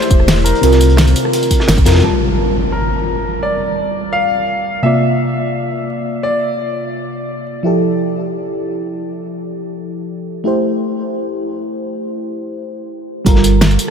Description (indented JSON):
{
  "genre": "liquid drum and bass",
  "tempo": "171 BPM",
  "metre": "4/4",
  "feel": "straight",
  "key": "G dorian",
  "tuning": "A4 = 440 Hz",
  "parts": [
    { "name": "clear grand piano", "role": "melody", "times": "0.0-7.4 s", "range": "Bb4 to F5", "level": "-20 LUFS", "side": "left 1 dB", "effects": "tape echo" },
    { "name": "mellow FM electric piano", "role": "accompaniment", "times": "0.0-13.9 s", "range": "C3 to A5", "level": "-17 LUFS", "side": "equal", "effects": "chorus, phaser, diffuse ambient delay" },
    { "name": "pop drum kit", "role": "drums", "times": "0.0-2.0, 13.3-13.9 s", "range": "hi-hat, ride cymbal, rim click, snare drum, tambourine", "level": "-19 LUFS", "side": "equal", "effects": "low-pass filter on snare, low-pass filter on hats, low-pass filter on cymbals, low-pass filter on perc, low-pass filter on room" },
    { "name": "sub bass with octave", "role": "bass", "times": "0.1-2.0, 13.3-13.8 s", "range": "E1 to F2", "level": "-12 LUFS", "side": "equal", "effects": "none" },
    { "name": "electronic kick drum", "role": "drums", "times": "0.1-1.8, 13.3 s", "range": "none", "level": "-13 LUFS", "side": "equal", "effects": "none" },
    { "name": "crunchy breakbeat drum kit", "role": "drums", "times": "0.3-2.0, 13.3-13.9 s", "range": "hi-hat, snare drum", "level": "-24 LUFS", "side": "equal", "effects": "high-pass filter on hats, high-pass filter on snare, high-pass filter on room" },
    { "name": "impact", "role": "sound effects", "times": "2.0-3.4 s", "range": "none", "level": "-22 LUFS", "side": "equal", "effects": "none" }
  ],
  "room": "moderate huge ambient reverb, RT60 7.4 s",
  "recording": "dreamy mix soaked in reverb",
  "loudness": "-13 LUFS",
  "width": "side -7 dB against mid",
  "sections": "0.0-2.0 A section; 2.0-13.3 B section",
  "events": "drop 0.0-2.0; band accent 1.7; impact 2.0-3.4",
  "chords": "0.0 Am7; 0.6 C7sus4; 2.0 Gm9; 4.8 C9sus4; 7.7 Fmaj9; 10.5 Am7; 13.3 Gm9",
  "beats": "0.28 | 0.63 0.98 1.33 1.69 | 2.04 2.39 2.74 3.09 | 3.44 3.79 4.14 4.49 | 4.84 5.19 5.54 5.89 | 6.25 6.60 6.95 7.30 | 7.65 8.00 8.35 8.70 | 9.05 9.40 9.76 10.11 | 10.46 10.81 11.16 11.51 | 11.86 12.21 12.56 12.91 | 13.26 13.62"
}